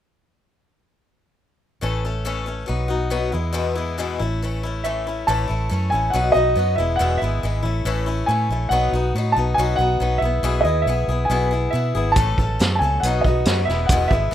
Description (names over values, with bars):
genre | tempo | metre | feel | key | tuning
folk rock and heartland rock | 139 BPM | 4/4 | straight | E major | A4 = 440 Hz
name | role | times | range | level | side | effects
picked swing-style acoustic guitar | accompaniment | 1.8-14.3 s | E2 to A4 | -24 LUFS | left 5 dB | none
vintage muted fingered electric bass | bass | 1.8-14.3 s | E1 to B2 | -22 LUFS | right 1 dB | none
warm grand piano | melody | 4.8-14.3 s | D#5 to A5 | -22 LUFS | right 1 dB | none
vintage drum kit | drums | 12.2-14.2 s | hi-hat, kick drum, snare drum | -21 LUFS | right 1 dB | none
room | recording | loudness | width
light reverb | rough home demo mix | -18 LUFS | side -11 dB against mid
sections
1.8-5.3 A section; 5.3-14.3 B section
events
none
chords
1.8 A; 2.7 B; 3.3 E; 4.2 A; 6.1 B; 6.8 E; 7.6 A; 8.7 B; 10.2 E/B; 12.2 A; 13.0 B; 13.7 E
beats
| 1.82 2.26 2.69 3.12 | 3.55 3.98 4.41 4.84 | 5.27 5.70 6.13 6.56 | 6.99 7.42 7.85 8.28 | 8.71 9.14 9.57 10.00 | 10.44 10.87 11.30 11.73 | 12.16 12.59 13.02 13.46 | 13.89 14.32